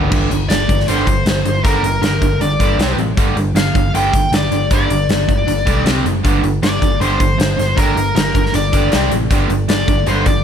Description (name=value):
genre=hard rock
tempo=157 BPM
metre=4/4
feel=straight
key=G minor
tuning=A4 = 440 Hz
part: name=cranked stack guitar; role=riff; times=0.0-10.4 s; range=G2 to C4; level=-19 LUFS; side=right 2 dB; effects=overdrive
part: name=overdriven picked electric bass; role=bass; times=0.0-10.4 s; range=F#1 to C2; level=-20 LUFS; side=equal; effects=none
part: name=huge arena drum kit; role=drums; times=0.1-10.4 s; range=crash cymbal, hi-hat, kick drum, snare drum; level=-17 LUFS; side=equal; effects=none
part: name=high-gain lead guitar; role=melody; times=0.5-10.4 s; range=Bb4 to G5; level=-19 LUFS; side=left 2 dB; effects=distortion, tape echo
room=light reverb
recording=none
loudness=-13 LUFS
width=side -8 dB against mid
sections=0.1-10.4 A section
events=none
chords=0.1 Gm; 2.8 C5; 3.2 G5; 5.9 C5; 6.2 Gm; 8.9 C5; 9.3 G5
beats=| 0.12 0.50 0.88 1.26 | 1.64 2.03 2.41 2.79 | 3.17 3.56 3.94 4.32 | 4.71 5.09 5.47 5.86 | 6.24 6.62 7.01 7.39 | 7.78 8.16 8.54 8.93 | 9.31 9.69 10.07